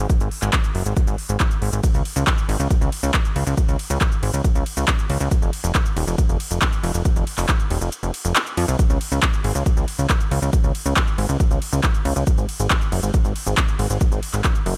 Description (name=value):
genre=uplifting trance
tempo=138 BPM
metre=4/4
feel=straight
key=Db major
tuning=A4 = 440 Hz
part: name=plucky analog bass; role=bass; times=0.0-14.7 s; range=Eb1 to F2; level=-23 LUFS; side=equal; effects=sidechain pumping
part: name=big-room dance drum kit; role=drums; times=0.1-14.7 s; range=handclaps, hi-hat, ride cymbal, shaker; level=-27 LUFS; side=equal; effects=none
part: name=electronic kick drum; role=drums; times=0.1-14.5 s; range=none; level=-22 LUFS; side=equal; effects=none
room=little or no reverb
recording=none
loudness=-20 LUFS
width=mono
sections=0.0-14.8 A section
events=kick drops out 7.9-8.8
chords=none